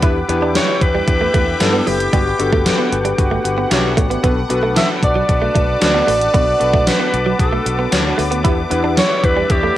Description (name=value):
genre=1980s-style pop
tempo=114 BPM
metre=4/4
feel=straight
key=unclear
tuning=A4 = 444 Hz
part: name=warm analog keys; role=accompaniment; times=0.0-9.8 s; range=B3 to A5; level=-21 LUFS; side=left 2 dB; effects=chorus, cassette tape
part: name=sweeping resonant pad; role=sustained chords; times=0.0-9.8 s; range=B4 to D6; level=-23 LUFS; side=left 2 dB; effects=chorus, cassette tape
part: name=direct-recorded clean electric guitar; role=riff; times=0.0-9.7 s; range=E3 to E4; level=-23 LUFS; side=right 5 dB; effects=wide subtle chorus, cassette tape
part: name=fretless electric bass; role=bass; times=0.0-9.7 s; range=F#1 to G2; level=-22 LUFS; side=equal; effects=ensemble chorus
part: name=gated 80s digital drum machine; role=drums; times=0.0-9.6 s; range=hi-hat, kick drum, snare drum, tambourine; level=-17 LUFS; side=equal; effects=gated reverb, gated reverb snare, overdrive, cassette tape
part: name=growling alto saxophone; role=melody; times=0.6-9.8 s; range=G4 to E5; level=-18 LUFS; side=equal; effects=cassette tape
room=moderate spring reverb, RT60 1.2 s, digital ambience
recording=home recording on cassette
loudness=-13 LUFS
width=side -13 dB against mid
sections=0.0-9.8 A section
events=synth keys fill 2.7-4.2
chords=0.0 Em7; 2.1 Gmaj7; 4.2 Bm7; 8.4 Em7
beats=| 0.03 0.55 1.08 1.61 | 2.13 2.66 3.19 3.71 | 4.24 4.76 5.29 5.82 | 6.34 6.87 7.40 7.92 | 8.45 8.97 9.50